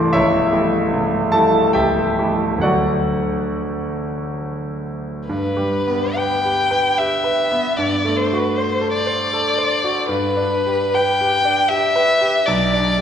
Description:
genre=classical, romantic duo for violin and grand piano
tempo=65-81 BPM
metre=3/4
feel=rubato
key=G major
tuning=A4 = 440 Hz
part: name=bright concert grand piano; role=accompaniment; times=0.0-13.0 s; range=C1 to D6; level=-18 LUFS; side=equal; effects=none
part: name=warm violin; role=melody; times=5.3-13.0 s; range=B4 to G5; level=-18 LUFS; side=left 2 dB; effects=none
room=wet concert hall reverb, RT60 2.2 s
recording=heard from further back in the room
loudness=-16 LUFS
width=side -8 dB against mid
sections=0.0-5.3 A section; 5.3-13.0 B section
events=none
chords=0.1 A7/C#; 2.6 D; 5.3 G; 7.8 D7/G; 10.1 G; 12.5 G/B (rootless)

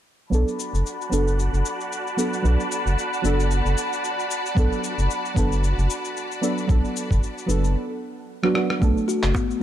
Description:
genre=organic downtempo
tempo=113 BPM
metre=4/4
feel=swing 56% on 16ths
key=B minor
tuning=A4 = 440 Hz
part: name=deep mellow chord stab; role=accompaniment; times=0.3-9.6 s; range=F#3 to A4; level=-26 LUFS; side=right 2 dB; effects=chorus, sidechain pumping, digital delay
part: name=clear symphonic string section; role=sustained chords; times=0.3-7.7 s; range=F#4 to B5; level=-29 LUFS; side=left 3 dB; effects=sidechain pumping, low-pass filter
part: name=round analog bass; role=bass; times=0.3-9.3 s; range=F#1 to B1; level=-21 LUFS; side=equal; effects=tube saturation, sidechain pumping
part: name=electronic cabasa, rim click and handclaps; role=drums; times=0.3-9.6 s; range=none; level=-32 LUFS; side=left 3 dB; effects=none
part: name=wind-like tuned noise texture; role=texture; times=0.9-7.8 s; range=F#5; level=-34 LUFS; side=right 6 dB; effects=built-in reverb
part: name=electronic kick drum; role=drums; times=4.6-9.5 s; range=none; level=-23 LUFS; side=equal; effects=none
part: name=kalimba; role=arpeggios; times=8.8-9.5 s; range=A3 to F#4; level=-23 LUFS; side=left 2 dB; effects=digital delay
part: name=darbuka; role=percussion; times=9.3-9.5 s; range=none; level=-36 LUFS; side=right 2 dB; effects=none
room=light reverb, digital ambience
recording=none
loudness=-20 LUFS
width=side -11 dB against mid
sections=0.3-8.8 A section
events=filter sweep on analog synth bass 0.3-8.8; filter sweep on string section 0.3-8.8; break 7.8-8.8; drum fill 8.4-8.8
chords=0.3 Bm7

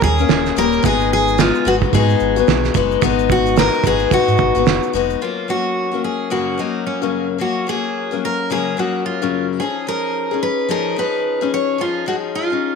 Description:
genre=acoustic pop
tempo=109 BPM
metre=4/4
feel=swing 60% on 16ths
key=F# major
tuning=A4 = 440 Hz
part: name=picked steel-string acoustic guitar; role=melody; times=0.0-12.8 s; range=C#4 to C#5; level=-20 LUFS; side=right 2 dB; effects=none
part: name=picked steel-string acoustic guitar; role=accompaniment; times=0.0-12.8 s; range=F#2 to G#4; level=-19 LUFS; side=left 12 dB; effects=none
part: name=sub bass with octave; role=bass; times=0.0-5.2 s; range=D#1 to G#2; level=-21 LUFS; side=right 2 dB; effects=none
part: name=cloth-damped thuddy drum kit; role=drums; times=0.0-5.2 s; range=kick drum, shaker, snare drum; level=-19 LUFS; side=right 10 dB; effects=none
room=moderate spring reverb, RT60 2.5 s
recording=1960s-style stereo with parts hard left and right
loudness=-15 LUFS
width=side -5 dB against mid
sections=0.0-5.2 A section; 5.2-12.8 B section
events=none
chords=0.0 D#7; 0.8 G#m7; 5.2 F#; 9.6 C#add9/E#

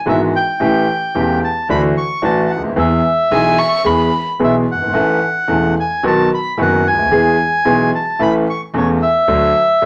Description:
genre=tango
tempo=111 BPM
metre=4/4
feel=rubato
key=A major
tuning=A4 = 440 Hz
part: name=bandoneon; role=melody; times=0.1-9.9 s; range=C#5 to C#6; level=-18 LUFS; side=equal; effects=none
part: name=clear concert grand piano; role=accompaniment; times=0.1-9.9 s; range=E1 to A4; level=-18 LUFS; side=equal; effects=none
part: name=upright bass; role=bass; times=0.1-9.9 s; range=E1 to E2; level=-30 LUFS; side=equal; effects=none
part: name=warm violin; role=second line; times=3.3-4.3 s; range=G#5 to C#6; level=-20 LUFS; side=equal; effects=none
room=wet studio reverb, RT60 0.6 s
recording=none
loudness=-15 LUFS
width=mono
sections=0.0-9.9 A section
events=none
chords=0.0 Eadd9/G#; 0.6 A7; 1.7 Dadd9; 2.8 E; 4.9 A; 6.0 B; 7.1 E; 8.2 A; 9.3 D

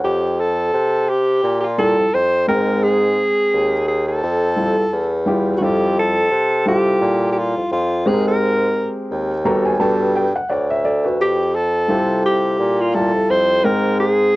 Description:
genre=hip hop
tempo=86 BPM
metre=4/4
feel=swing 58% on 16ths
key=F major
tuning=A4 = 439 Hz
part: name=breathy alto saxophone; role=melody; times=0.0-14.4 s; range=F4 to C5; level=-17 LUFS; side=equal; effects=cassette tape
part: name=dark grand piano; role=accompaniment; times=0.0-14.4 s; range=G3 to Bb5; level=-20 LUFS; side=equal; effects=none
part: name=warm bassoon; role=bass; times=0.0-14.4 s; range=D2 to C3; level=-21 LUFS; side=equal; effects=none
room=light reverb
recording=home recording on cassette, vinyl crackle, nothing above 7.9 kHz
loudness=-15 LUFS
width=side -20 dB against mid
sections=0.0-5.6 A section; 5.6-14.4 A section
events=grand piano fill 9.1-11.2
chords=0.0 Fadd9; 2.5 Abmaj9; 4.2 Fmaj9; 8.1 Abmaj9; 9.8 Gmaj9; 11.2 Fmaj9; 13.6 Abmaj9

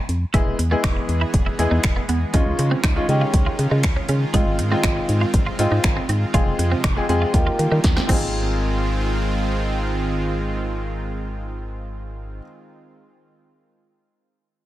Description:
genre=dance-pop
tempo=120 BPM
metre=4/4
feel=straight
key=Ab major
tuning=A4 = 438 Hz
part: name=organ-like FM bass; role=bass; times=0.1-12.4 s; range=E1 to Eb3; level=-22 LUFS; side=equal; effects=sidechain pumping
part: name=deep house drum kit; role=drums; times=0.1-8.2 s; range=crash cymbal, finger snaps, hi-hat, kick drum, snare drum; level=-21 LUFS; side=equal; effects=overdrive
part: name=clear concert grand piano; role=accompaniment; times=0.3-12.4 s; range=G#3 to G#4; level=-25 LUFS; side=left 1 dB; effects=sidechain pumping
part: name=supersaw pad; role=sustained chords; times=0.3-12.4 s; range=C3 to G#4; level=-27 LUFS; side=right 1 dB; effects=sidechain pumping
part: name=twelve-string electric guitar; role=riff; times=0.3-8.4 s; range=Ab3 to F4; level=-28 LUFS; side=right 4 dB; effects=analog chorus
room=little or no reverb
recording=none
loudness=-18 LUFS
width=side -14 dB against mid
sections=0.0-8.3 A section; 8.3-12.3 B section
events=drum fill 7.8-8.3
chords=0.3 E; 2.3 Dbadd9; 4.3 Ab6; 6.3 Fm; 7.3 Ebadd9; 8.1 Ab6

